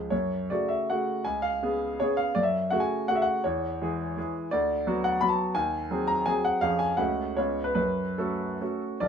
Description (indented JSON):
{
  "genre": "classical, romantic triple-time dance for piano with dotted rhythms",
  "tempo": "136-177 BPM",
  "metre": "3/4",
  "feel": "rubato",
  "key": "F# minor",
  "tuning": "A4 = 441 Hz",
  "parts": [
    { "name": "clear grand piano", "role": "solo", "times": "0.0-9.1 s", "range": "B0 to B5", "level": "-25 LUFS", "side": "equal", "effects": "none" }
  ],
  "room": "light reverb",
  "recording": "minimal, uncompressed stereo recording",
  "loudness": "-25 LUFS",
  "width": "side -7 dB against mid",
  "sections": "0.1-9.0 A section",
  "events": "none",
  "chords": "0.1 F#m; 1.3 C#7; 2.4 F#m; 3.4 C#m/E; 4.5 Bm/D; 5.6 G#7/D#; 6.6 C#/E#; 7.0 F#m/C#; 7.4 C#7; 7.8 F#m"
}